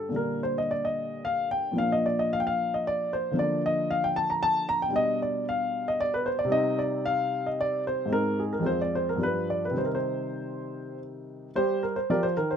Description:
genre	classical, baroque-style suite movement for grand piano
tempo	99-116 BPM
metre	3/4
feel	rubato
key	C minor from 5.0 s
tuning	A4 = 440 Hz
part	warm baby grand piano	solo	0.0-12.6 s	F2 to Bb5	-25 LUFS	equal	none
room	little or no reverb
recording	close, detailed microphones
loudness	-25 LUFS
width	side -8 dB against mid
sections	0.0-11.6 A section; 11.6-12.6 A section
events	none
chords	0.2 Gm/Bb; 3.4 Bb/D; 5.0 G/B; 6.5 Cm; 8.1 Ab; 8.7 Fm; 9.2 G7; 9.8 Cm; 11.6 Gm

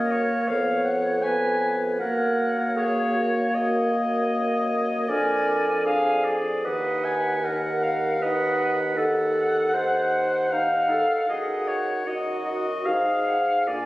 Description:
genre	classical, slow romantic movement for wind quintet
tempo	77 BPM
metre	4/4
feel	rubato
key	Eb minor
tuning	A4 = 440 Hz
part	silver concert flute	melody	0.0-13.9 s	Db5 to Ab5	-31 LUFS	left 1 dB	none
part	clear oboe	second line	0.0-13.9 s	Db5 to Ab5	-26 LUFS	left 1 dB	none
part	mellow clarinet	accompaniment	0.0-13.9 s	Eb4 to Db5	-27 LUFS	right 1 dB	none
part	warm French horn	accompaniment	0.0-13.9 s	Bb3 to Eb4	-28 LUFS	equal	none
part	dark bassoon	bass	0.0-13.9 s	Eb2 to Bb2	-29 LUFS	equal	none
room	moderate concert hall reverb, RT60 2.0 s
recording	recorded on a phone in the room, studio reverb, compression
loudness	-21 LUFS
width	side -17 dB against mid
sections	0.0-13.9 A section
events	none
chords	0.5 Db7/F; 2.0 Gb; 5.1 Bb7/F; 6.6 Ebm; 11.3 Ebm/Gb; 12.9 Fm7/Ab

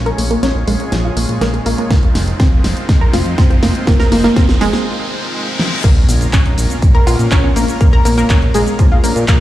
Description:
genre	progressive house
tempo	122 BPM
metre	4/4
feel	straight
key	Bb minor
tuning	A4 = 440 Hz
part	supersaw pad	sustained chords	0.0-9.4 s	Ab3 to Db5	-24 LUFS	equal	sidechain pumping, low-pass filter
part	fat analog bass	bass	0.0-9.4 s	F1 to Bb2	-18 LUFS	equal	sidechain pumping
part	riser, reverse cymbal and impact	sound effects	1.1-7.8 s	none	-25 LUFS	equal	none
part	analog pluck	arpeggios	0.1-9.3 s	F3 to Bb4	-18 LUFS	equal	analog chorus, sidechain pumping, dub echo
part	big-room dance drum kit	drums	0.1-9.4 s	crash cymbal, handclaps, hi-hat, shaker, snare drum	-20 LUFS	equal	studio reverb
part	electronic kick drum	drums	1.9-9.4 s	none	-11 LUFS	equal	studio reverb
part	congas and cowbell	percussion	6.1-8.8 s	none	-28 LUFS	left 3 dB	none
room	digital ambience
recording	played on a big sound system in a bare room, stone room reverb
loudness	-11 LUFS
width	side -14 dB against mid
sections	0.0-5.8 A section; 5.8-9.4 B section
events	build-up 0.0-5.8; drum fill 0.0-4.9, 5.6; filter sweep on synth pluck 0.0-5.8; filter sweep on supersaw synth 0.0-5.8; riser 1.1-5.8; break 4.9-5.8; reverse cymbal 4.9-5.8; drop 5.8-9.4; impact 5.8-7.8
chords	0.0 Bbm7; 1.9 Fm7; 5.8 Bbm7

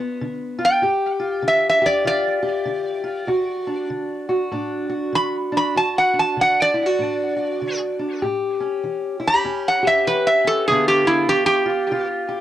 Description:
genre	acoustic country blues, solo or duo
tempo	97 BPM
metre	4/4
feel	swing 60% on 8ths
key	unclear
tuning	A4 = 440 Hz
part	fingerpicked steel-string acoustic guitar	accompaniment	0.0-12.4 s	D2 to G4	-23 LUFS	left 1 dB	cassette tape
part	metal-body resonator slide guitar	melody	0.6-12.1 s	E4 to B5	-18 LUFS	right 1 dB	cassette tape, analog delay
room	light reverb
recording	home recording on cassette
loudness	-18 LUFS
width	side -12 dB against mid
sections	0.0-12.4 A section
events	resonator guitar played with a steel bar solo 0.0-12.4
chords	0.0 G7; 3.3 D; 8.2 A7; 10.7 G7

